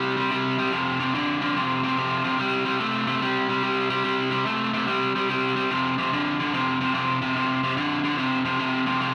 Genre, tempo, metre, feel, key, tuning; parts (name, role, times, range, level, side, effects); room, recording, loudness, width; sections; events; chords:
blues; 145 BPM; 4/4; swing 65% on 8ths; A4 = 438 Hz
biting overdriven guitar; solo; 0.0-9.1 s; F2 to A3; -24 LUFS; equal
moderate large studio reverb, RT60 1.2 s; vinyl crackle; -24 LUFS; mono
0.0-9.1 A section
0.0 C5; 0.7 F5; 2.4 C5; 5.7 F5